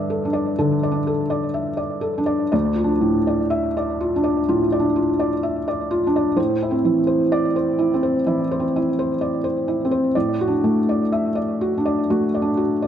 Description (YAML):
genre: neoclassical minimalist piano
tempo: 62 BPM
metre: 4/4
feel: rubato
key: unclear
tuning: A4 = 441 Hz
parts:
  - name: felt-muted upright piano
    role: solo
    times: 0.0-12.9 s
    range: D2 to E5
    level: -18 LUFS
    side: equal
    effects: slapback echo
room: light reverb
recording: dark, warm production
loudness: -18 LUFS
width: side -9 dB against mid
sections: 0.0-12.9 A section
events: none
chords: 0.0 Gsus2; 2.5 Dm; 6.4 Am; 10.1 D/A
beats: 0.60 1.57 | 2.54 3.51 4.46 5.42 | 6.37 7.32 8.26 9.20 | 10.15 11.12 12.10